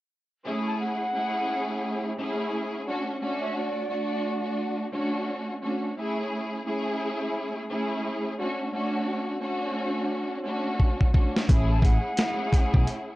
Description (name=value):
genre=hip hop, boom-bap hip-hop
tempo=87 BPM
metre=4/4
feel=swing 61% on 16ths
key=A major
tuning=A4 = 437 Hz
part: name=dark studio string section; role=accompaniment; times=0.4-13.1 s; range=A3 to G#4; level=-28 LUFS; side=equal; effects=cassette tape, high-pass filter, low-pass filter
part: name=breathy mellow jazz flute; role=melody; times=0.7-4.8, 11.7-13.0 s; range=D5 to A5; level=-32 LUFS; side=equal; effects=high-pass filter, low-pass filter, ping-pong delay
part: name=dusty soul sampler-style drum kit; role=drums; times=10.8-13.1 s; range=hi-hat, kick drum, snare drum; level=-21 LUFS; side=equal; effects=none
part: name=deep dub fingered electric bass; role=bass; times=11.5-12.9 s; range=A1 to B1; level=-23 LUFS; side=equal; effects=none
room=light reverb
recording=worn, warbling old tape, cassette tape, warbly pitch drift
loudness=-25 LUFS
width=side -17 dB against mid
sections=0.5-11.5 A section; 11.5-13.2 B section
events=drum fill 10.8-11.5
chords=0.5 Amaj7; 2.9 Dmaj7; 6.0 Amaj7; 8.4 Dmaj7; 11.5 Amaj7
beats=| 0.45 1.14 1.83 2.52 | 3.21 3.90 4.59 5.28 | 5.97 6.66 7.35 8.04 | 8.73 9.42 10.11 10.80 | 11.49 12.18 12.87